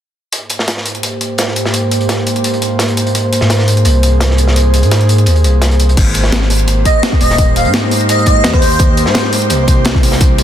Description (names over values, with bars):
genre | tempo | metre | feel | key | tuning
liquid drum and bass | 170 BPM | 4/4 | straight | Ab major | A4 = 440 Hz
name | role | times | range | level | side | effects
airy breathy pad | sustained chords | 0.7-10.4 s | Ab2 to C5 | -17 LUFS | right 2 dB | chorus, sidechain pumping
breakbeat sampler-style drum kit | drums | 0.3-10.4 s | crash cymbal, hi-hat, rim click, snare drum | -18 LUFS | left 1 dB | overdrive
crunchy breakbeat drum kit | drums | 0.3-10.4 s | hi-hat, snare drum | -20 LUFS | equal | high-pass filter on hats, high-pass filter on snare, high-pass filter on room
smooth synth bass | bass | 3.4-10.4 s | Eb1 to Ab2 | -12 LUFS | equal | none
electronic kick drum | drums | 6.0-10.3 s | none | -12 LUFS | equal | none
airy dreamy lead | melody | 6.9-8.8 s | C5 to F5 | -16 LUFS | equal | chorus, ping-pong delay
room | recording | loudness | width
light reverb, digital ambience | dense, heavily limited modern master | -10 LUFS | side -10 dB against mid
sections
0.3-6.0 A section; 6.0-10.4 B section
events
filter sweep on analog synth pad 0.3-6.0; drop 6.0-10.4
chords
0.3 Abmaj9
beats
| 0.33 0.68 1.03 1.39 | 1.74 2.09 2.44 2.80 | 3.15 3.50 3.85 4.21 | 4.56 4.91 5.27 5.62 | 5.97 6.33 6.68 7.03 | 7.38 7.74 8.09 8.44 | 8.80 9.15 9.50 9.86 | 10.21